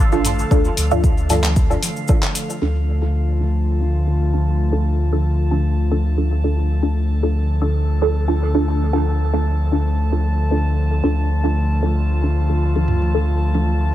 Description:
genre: dub techno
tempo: 114 BPM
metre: 4/4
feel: swing 53% on 16ths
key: D minor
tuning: A4 = 439 Hz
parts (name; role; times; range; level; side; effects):
- airy breathy pad; sustained chords; 0.1-13.9 s; D3 to A4; -25 LUFS; equal; chorus, sidechain pumping
- warm sub bass; bass; 0.0-13.9 s; A1 to D2; -18 LUFS; equal; sidechain pumping
- drifting glass-harmonics texture; texture; 0.0-13.9 s; F5 to A5; -32 LUFS; right 1 dB; chorus, built-in reverb, sidechain pumping
- filtered dub chord stab; stabs; 0.1-13.7 s; D4 to A4; -23 LUFS; right 1 dB; phaser, cassette tape, sidechain pumping, dub echo
- cabasa; percussion; 0.1-2.6 s; none; -29 LUFS; left 2 dB; none
- electronic toms; percussion; 0.1-1.9, 12.8-13.6 s; none; -26 LUFS; equal; sidechain pumping on toms
- deep house drum kit; drums; 0.2-2.5 s; handclaps, hi-hat; -25 LUFS; equal; low-pass filter on hats, low-pass filter on snare, low-pass filter on room, dub echo
- electronic kick drum; drums; 0.5-2.2 s; none; -16 LUFS; equal; none
room: light reverb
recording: none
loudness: -16 LUFS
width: side -13 dB against mid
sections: 0.0-2.6 A section; 2.6-13.9 B section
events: filter sweep on synth stab 2.6-13.9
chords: 0.0 Dm

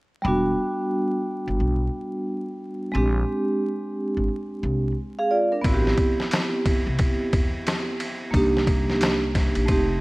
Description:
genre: hip hop, jazz-hop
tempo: 89 BPM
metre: 4/4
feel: swing 63% on 16ths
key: E minor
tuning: A4 = 440 Hz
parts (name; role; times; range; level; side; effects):
- vibraphone with soft mallets; accompaniment; 0.2-10.0 s; G3 to E#5; -24 LUFS; right 1 dB; none
- upright bass; bass; 0.2-10.0 s; E1 to E2; -26 LUFS; equal; none
- trip hop sampler-style drum kit; drums; 5.6-9.9 s; hi-hat, kick drum, ride cymbal, snare drum; -23 LUFS; equal; overdrive
room: light reverb, studio ambience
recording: vinyl crackle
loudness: -21 LUFS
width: side -22 dB against mid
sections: 0.2-10.0 A section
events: none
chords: 0.2 Em9 (rootless); 2.9 A#13; 5.6 Am9 (rootless); 8.3 Cm7

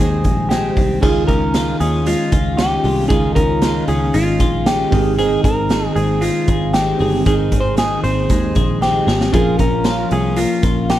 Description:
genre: jangly indie pop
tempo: 116 BPM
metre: 4/4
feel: straight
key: unclear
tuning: A4 = 438 Hz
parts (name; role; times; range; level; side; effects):
- clean electric guitar; melody; 0.0-11.0 s; F4 to C5; -20 LUFS; equal; phaser, slapback echo
- picked twelve-string acoustic guitar; accompaniment; 0.0-11.0 s; Ab2 to C5; -26 LUFS; right 7 dB; none
- twelve-string electric guitar; arpeggios; 0.0-11.0 s; Eb3 to Ab4; -22 LUFS; left 5 dB; none
- picked electric bass; bass; 0.0-11.0 s; G1 to Eb2; -20 LUFS; equal; none
- raw garage drum kit; drums; 0.2-11.0 s; crash cymbal, hi-hat, kick drum, snare drum; -19 LUFS; equal; none
- warbly lo-fi synth keys; accompaniment; 1.0-11.0 s; C4 to Bb4; -25 LUFS; right 5 dB; chorus
room: little or no reverb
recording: none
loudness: -14 LUFS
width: side -13 dB against mid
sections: 0.0-1.0 A section; 1.0-11.0 B section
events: drum fill 8.8-9.3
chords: 0.0 Abmaj7; 1.0 Dbadd9; 4.9 Ab; 9.3 Bbm

